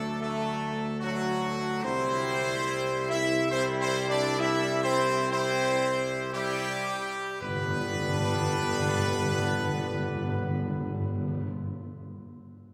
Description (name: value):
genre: classical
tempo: 53-76 BPM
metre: 3/4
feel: straight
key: G major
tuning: A4 = 440 Hz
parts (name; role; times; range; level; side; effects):
- bright trumpet section; melody; 0.0-11.4 s; F#4 to E5; -33 LUFS; equal; none
- warm French horn section; sustained chords; 0.0-11.4 s; F#3 to E4; -35 LUFS; equal; none
- warm trombone section; sustained chords; 0.0-11.4 s; F#3 to E4; -39 LUFS; equal; none
- mellow tuba; bass; 0.0-11.4 s; G1 to D2; -35 LUFS; equal; none
- timpani; percussion; 7.4-11.5 s; G2; -34 LUFS; equal; none
room: wet church reverb, RT60 3.0 s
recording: recorded in a church or concert hall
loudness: -28 LUFS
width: mono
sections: 0.0-7.4 A section; 7.4-10.7 B section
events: slowing down 0.6-7.4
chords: 0.0 D; 1.8 C; 7.4 G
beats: 0.21 1.01 | 1.84 2.66 3.50 | 4.38 5.31 6.32 | 7.42 8.50 9.58